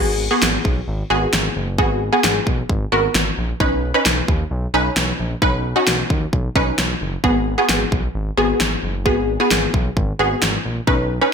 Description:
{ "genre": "synth-pop", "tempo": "132 BPM", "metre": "4/4", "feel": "straight", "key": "G# minor", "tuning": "A4 = 439 Hz", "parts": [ { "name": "wide unison pluck", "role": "accompaniment", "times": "0.0-11.3 s", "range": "B3 to B4", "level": "-19 LUFS", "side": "equal", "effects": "ensemble chorus" }, { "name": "smooth gliding synth bass", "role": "bass", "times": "0.0-11.2 s", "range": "F#1 to D#2", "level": "-23 LUFS", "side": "equal", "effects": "none" }, { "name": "pop drum kit", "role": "drums", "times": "0.4-11.0 s", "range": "kick drum, snare drum", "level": "-19 LUFS", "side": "equal", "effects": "gated reverb" } ], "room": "wet plate reverb, RT60 1.2 s", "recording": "bright 1980s-style digital production", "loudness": "-16 LUFS", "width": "side -6 dB against mid", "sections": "0.0-11.3 A section", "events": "none", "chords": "0.0 G#m7; 3.6 Badd9; 7.2 G#m7" }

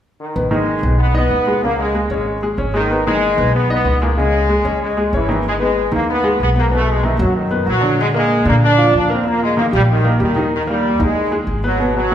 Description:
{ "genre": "latin", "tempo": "189 BPM", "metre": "4/4", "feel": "straight", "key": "unclear", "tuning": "A4 = 439 Hz", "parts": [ { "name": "brilliant trombone section", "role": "melody", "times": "0.2-12.1 s", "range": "D#3 to D4", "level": "-17 LUFS", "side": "equal", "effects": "none" }, { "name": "clear baby grand piano", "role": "accompaniment", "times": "0.4-12.1 s", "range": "A#2 to D#5", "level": "-19 LUFS", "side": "equal", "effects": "none" }, { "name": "upright bass", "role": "bass", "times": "0.4-12.1 s", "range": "G#1 to A#2", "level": "-19 LUFS", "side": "equal", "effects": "none" } ], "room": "wet recital hall reverb, RT60 1.6 s", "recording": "recorded in a church or concert hall", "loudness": "-14 LUFS", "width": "side -10 dB against mid", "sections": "0.4-5.4 A section; 5.4-12.1 B section", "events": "none", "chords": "0.4 G#m; 1.6 C#5; 2.9 G#m; 4.2 C#m; 5.4 G#m; 6.7 B; 8.0 A#7; 9.3 D#; 10.5 D#sus4" }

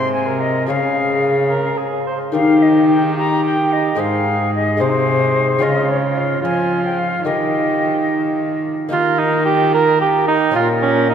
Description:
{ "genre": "classical, renaissance-style consort dance", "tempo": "73 BPM (dotted quarters)", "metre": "6/8", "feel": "straight", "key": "Eb mixolydian", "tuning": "A4 = 441 Hz", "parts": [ { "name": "bright concert flute", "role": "melody", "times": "0.0-11.1 s", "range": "Bb4 to C6", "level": "-21 LUFS", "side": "left 3 dB", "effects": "none" }, { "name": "mellow cor anglais", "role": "second line", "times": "0.0-11.1 s", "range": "Db4 to C5", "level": "-19 LUFS", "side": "right 4 dB", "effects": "none" }, { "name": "lute", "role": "accompaniment", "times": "0.0-11.1 s", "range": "Ab2 to Db5", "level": "-20 LUFS", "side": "left 3 dB", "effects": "none" }, { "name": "rich cello", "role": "bass", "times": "0.0-11.1 s", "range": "Ab2 to F3", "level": "-22 LUFS", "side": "right 2 dB", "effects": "none" } ], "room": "wet cathedral reverb, RT60 6.3 s", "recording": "none", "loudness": "-14 LUFS", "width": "side -8 dB against mid", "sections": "0.0-8.9 A section; 8.9-11.1 A section", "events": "none", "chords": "0.0 Ab; 0.7 Db; 2.3 Eb; 4.0 Ab; 5.6 Db; 7.3 Eb; 10.6 Bbm" }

